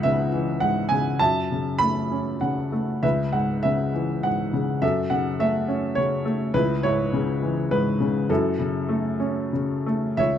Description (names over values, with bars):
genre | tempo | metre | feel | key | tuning
classical, lyrical solo piano | 90-106 BPM | 3/4 | rubato | F# minor | A4 = 440 Hz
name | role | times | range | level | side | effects
dark baby grand piano | solo | 0.0-10.4 s | C#2 to B5 | -21 LUFS | equal | none
room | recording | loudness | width
light reverb | close, detailed microphones | -21 LUFS | side -9 dB against mid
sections
0.0-10.2 A section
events
none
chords
0.0 C#m7; 1.2 F#m7; 3.0 C#m7; 4.8 F#m7; 6.5 C#m7; 8.3 F#m7